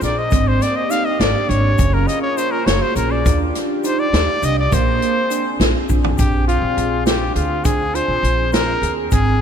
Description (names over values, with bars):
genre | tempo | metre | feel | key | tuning
progressive instrumental, band music in an uneven meter | 205 BPM (eighths) | 5/8 | straight | unclear | A4 = 439 Hz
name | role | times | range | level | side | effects
clear trumpet | melody | 0.0-9.4 s | F4 to F5 | -20 LUFS | left 2 dB | analog delay
warm analog pad | accompaniment | 0.0-9.4 s | Bb3 to Ab4 | -26 LUFS | left 2 dB | chorus
tine electric piano | arpeggios | 0.0-9.4 s | Bb3 to Ab4 | -23 LUFS | right 8 dB | medium tremolo, analog delay
upright bass | bass | 0.0-9.4 s | Gb1 to Eb2 | -20 LUFS | equal | none
swinging big-band drum kit | drums | 0.0-9.3 s | hi-hat, kick drum, snare drum, toms | -20 LUFS | left 1 dB | none
egg shaker | percussion | 0.0-9.4 s | none | -37 LUFS | left 18 dB | none
room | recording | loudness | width
moderate lush hall reverb, RT60 2.6 s | dreamy mix soaked in reverb | -15 LUFS | side -8 dB against mid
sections
0.0-6.2 A section; 6.2-9.4 B section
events
trumpet solo 0.0-6.2; drum fill 5.9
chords
0.3 Abmaj9#11; 1.8 Gbmaj7; 3.3 Ebmaj7; 4.7 Bb9; 6.2 Bb7